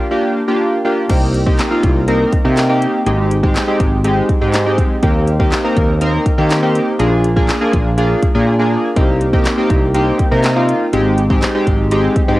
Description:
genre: dance-pop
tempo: 122 BPM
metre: 4/4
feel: straight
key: C minor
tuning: A4 = 435 Hz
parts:
  - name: chorused retro synth keys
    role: accompaniment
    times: 0.0-12.4 s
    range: Ab3 to Bb4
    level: -15 LUFS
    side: equal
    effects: sidechain pumping, cassette tape
  - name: woody fretless electric bass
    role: bass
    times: 1.1-12.4 s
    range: Ab1 to Eb3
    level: -16 LUFS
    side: equal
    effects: sidechain pumping
  - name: house drum kit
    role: drums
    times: 1.1-12.3 s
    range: crash cymbal, handclaps, hi-hat, kick drum, snare drum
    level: -16 LUFS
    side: equal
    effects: cassette tape
room: light reverb, digital ambience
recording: home recording on cassette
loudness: -12 LUFS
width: side -17 dB against mid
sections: 0.0-1.1 A section; 1.1-12.4 B section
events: silent gap 8.5-9.0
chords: 0.0 Gm7; 1.1 Cm7; 3.1 Abmaj7; 5.0 Eb6; 7.0 Bb7; 9.0 Cm7; 10.9 Abmaj7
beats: 0.11 0.60 | 1.09 1.59 2.08 2.57 | 3.06 3.55 4.05 4.54 | 5.03 5.52 6.01 6.50 | 7.00 7.49 7.98 8.47 | 8.96 9.46 9.95 10.44 | 10.93 11.42 11.91

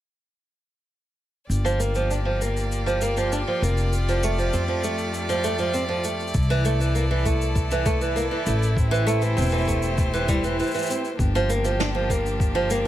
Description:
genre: folktronica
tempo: 99 BPM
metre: 4/4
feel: straight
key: G dorian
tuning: A4 = 440 Hz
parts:
  - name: rich string quartet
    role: sustained chords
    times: 1.5-12.9 s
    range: F3 to D5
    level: -30 LUFS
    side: equal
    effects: plate reverb
  - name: upright bass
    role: bass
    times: 1.5-12.9 s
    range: E1 to F2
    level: -25 LUFS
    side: equal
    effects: tube saturation
  - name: shaker and snare drum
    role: drums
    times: 1.5-12.8 s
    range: none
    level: -34 LUFS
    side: equal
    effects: none
  - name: flamenco guitar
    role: arpeggios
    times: 1.6-12.9 s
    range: E3 to D4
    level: -25 LUFS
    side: right 2 dB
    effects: low-pass filter, digital delay, plate reverb
  - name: electronic kick drum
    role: drums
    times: 6.3-12.5 s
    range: none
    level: -24 LUFS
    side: equal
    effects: none
room: light reverb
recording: none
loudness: -21 LUFS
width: side -13 dB against mid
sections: 1.5-11.2 A section; 11.2-12.9 B section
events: break 10.6-11.2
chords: 1.5 Gm7; 3.9 F69; 6.3 C69; 8.8 Am7; 11.2 Gm7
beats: | 1.50 2.11 2.71 3.32 | 3.92 4.53 5.14 5.74 | 6.35 6.96 7.56 8.17 | 8.77 9.38 9.98 10.59 | 11.20 11.80 12.41

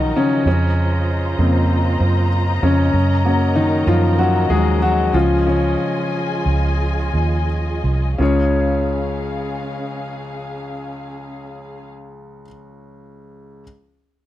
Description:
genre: pop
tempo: 82-97 BPM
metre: 4/4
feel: straight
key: Db major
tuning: A4 = 440 Hz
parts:
  - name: clear grand piano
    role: accompaniment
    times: 0.0-13.6 s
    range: Db2 to Db5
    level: -20 LUFS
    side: left 2 dB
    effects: none
  - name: muted studio string section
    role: sustained chords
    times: 0.0-11.9 s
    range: Db3 to Bb5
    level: -26 LUFS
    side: left 1 dB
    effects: none
  - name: vintage muted fingered electric bass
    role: bass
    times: 0.0-12.4 s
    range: C2 to Gb2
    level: -18 LUFS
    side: right 1 dB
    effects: none
room: studio ambience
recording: dry, close 1970s-style studio recording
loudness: -15 LUFS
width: side -13 dB against mid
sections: 0.0-8.2 A section; 8.2-11.1 B section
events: grand piano solo 0.0-8.2; slowing down 2.9-8.2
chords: 0.5 Bbmadd9/F; 2.9 Gb; 5.1 Db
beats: | 0.46 1.08 1.70 2.32 | 2.94 3.56 4.18 4.82 | 5.46 6.12 6.80 7.49 | 8.21 8.93 9.66 10.39

